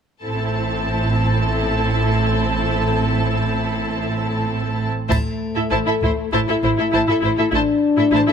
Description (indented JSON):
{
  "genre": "cinematic, epic orchestral film score",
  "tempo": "99 BPM",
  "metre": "4/4",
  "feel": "straight",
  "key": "unclear",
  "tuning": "A4 = 440 Hz",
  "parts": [
    { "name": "warm symphonic violin section", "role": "second line", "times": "0.2-8.3 s", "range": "E4 to A5", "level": "-24 LUFS", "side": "left 2 dB", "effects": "none" },
    { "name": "rich symphonic viola section", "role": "accompaniment", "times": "0.2-8.3 s", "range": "C4 to E4", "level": "-24 LUFS", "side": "equal", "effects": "none" },
    { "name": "rich symphonic cello section", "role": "bass", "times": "0.2-8.3 s", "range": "A2", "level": "-25 LUFS", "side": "right 3 dB", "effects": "none" },
    { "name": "warm symphonic double bass section", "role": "bass", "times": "0.2-8.2 s", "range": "A1", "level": "-24 LUFS", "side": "right 3 dB", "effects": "none" },
    { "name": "mellow French horn section", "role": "sustained chords", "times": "5.1-8.3 s", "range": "A3 to E4", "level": "-19 LUFS", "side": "left 4 dB", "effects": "none" },
    { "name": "solo taiko drums", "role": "drums", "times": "5.1-6.3 s", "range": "none", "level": "-25 LUFS", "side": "equal", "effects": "none" },
    { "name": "triangle", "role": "percussion", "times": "5.1-6.3 s", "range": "none", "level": "-43 LUFS", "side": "left 4 dB", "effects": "none" }
  ],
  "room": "light reverb",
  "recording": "close, detailed microphones",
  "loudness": "-17 LUFS",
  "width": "side -7 dB against mid",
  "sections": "0.2-5.1 A section; 5.1-8.3 B section",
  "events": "none",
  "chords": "0.2 Am; 5.1 A5",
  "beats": "| 0.24 0.85 1.46 2.06 | 2.67 3.27 3.87 4.48 | 5.10 5.71 6.33 6.93 | 7.53 8.13"
}